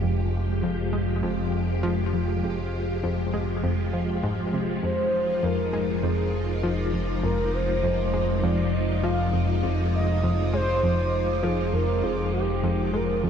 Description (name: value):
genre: ambient, sequencer-driven space music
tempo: 100 BPM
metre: 4/4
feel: straight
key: unclear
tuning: A4 = 443 Hz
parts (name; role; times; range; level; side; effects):
- phased string machine; sustained chords; 0.0-13.3 s; F3 to G4; -28 LUFS; left 1 dB; ensemble chorus, phaser
- analog pluck; riff; 0.0-13.3 s; F2 to Ab3; -29 LUFS; equal; chorus, ping-pong delay
- fat analog bass; bass; 0.0-13.3 s; F1; -28 LUFS; equal; none
- bubbling stepped-filter texture; texture; 0.0-13.3 s; F4 to D6; -39 LUFS; right 2 dB; chorus, built-in reverb
- expressive portamento lead; melody; 4.8-13.3 s; G4 to F5; -27 LUFS; equal; chorus, ping-pong delay
room: wet huge ambient reverb, RT60 8.6 s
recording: dark, warm production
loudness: -23 LUFS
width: side -8 dB against mid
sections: 0.0-13.3 A section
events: fade-in on synth texture 0.0-13.3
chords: 0.0 Fmadd9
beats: | 0.03 0.63 1.23 1.83 | 2.43 3.03 3.63 4.23 | 4.83 5.43 6.03 6.63 | 7.23 7.83 8.43 9.03 | 9.63 10.23 10.83 11.43 | 12.03 12.63 13.23